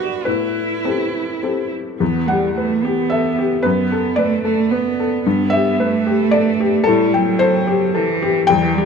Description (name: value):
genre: neoclassical piano and strings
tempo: 101-114 BPM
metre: 3/4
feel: rubato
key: E minor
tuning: A4 = 442 Hz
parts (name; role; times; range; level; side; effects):
- clear cello; second line; 0.0-8.9 s; E3 to F#4; -19 LUFS; right 7 dB; none
- felt-muted upright piano; accompaniment; 0.0-8.9 s; E2 to G5; -17 LUFS; left 4 dB; none
room: wet recital hall reverb, RT60 1.7 s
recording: close, detailed microphones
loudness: -15 LUFS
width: side -6 dB against mid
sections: 0.0-2.0 A section; 2.0-8.9 B section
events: none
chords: 0.3 Am7; 2.0 Em; 3.6 Bm7/F#; 5.3 G; 6.9 Am7